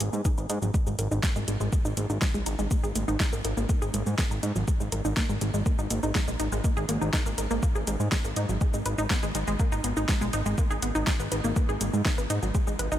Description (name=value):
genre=melodic techno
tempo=122 BPM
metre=4/4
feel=straight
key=G# minor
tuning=A4 = 440 Hz
part: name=wide unison pluck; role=arpeggios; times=0.0-13.0 s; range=F#3 to B4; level=-30 LUFS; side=equal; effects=sidechain pumping, tape echo
part: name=fat analog bass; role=bass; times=0.0-13.0 s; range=G#1 to G#2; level=-29 LUFS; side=equal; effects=sidechain pumping
part: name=deep house drum kit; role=drums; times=0.0-13.0 s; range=hi-hat, shaker, snare drum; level=-33 LUFS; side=equal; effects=sidechain pumping on perc, sidechain pumping on hats
part: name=electronic kick drum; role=drums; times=0.3-12.6 s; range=none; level=-26 LUFS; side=equal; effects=none
room=light reverb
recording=none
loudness=-24 LUFS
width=side -12 dB against mid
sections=0.0-13.0 A section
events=filter sweep on synth arpeggio sound 0.0-13.0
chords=0.0 G#m; 0.7 D#5/G#; 8.6 G#m